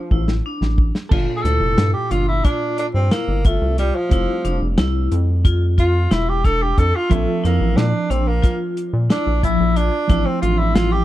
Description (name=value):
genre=progressive instrumental, band music in an uneven meter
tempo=180 BPM (eighths)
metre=9/8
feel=straight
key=G dorian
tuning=A4 = 442 Hz
part: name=warm tenor saxophone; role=melody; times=0.0-11.0 s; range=F3 to A4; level=-22 LUFS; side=right 1 dB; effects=none
part: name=hollow-body jazz guitar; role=accompaniment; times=0.0-11.0 s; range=Bb2 to E5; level=-27 LUFS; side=right 6 dB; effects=none
part: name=vibraphone with hard mallets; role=arpeggios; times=0.1-11.0 s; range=F3 to F4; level=-26 LUFS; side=left 5 dB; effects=none
part: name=rubbery square bass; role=bass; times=0.1-11.0 s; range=E1 to Bb2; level=-19 LUFS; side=equal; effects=none
part: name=warm soul drum kit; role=drums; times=0.1-10.9 s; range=crash cymbal, hi-hat, kick drum, snare drum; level=-18 LUFS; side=equal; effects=none
room=little or no reverb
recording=dark, warm production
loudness=-16 LUFS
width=side -14 dB against mid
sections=0.0-1.1 A section; 1.1-11.0 B section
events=drum fill 0.0-1.1; tenor saxophone solo 1.1-11.0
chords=0.0 Dm7/A; 1.1 Gm9; 4.1 Fmaj7; 7.1 Bbmaj7; 10.1 Dm7/A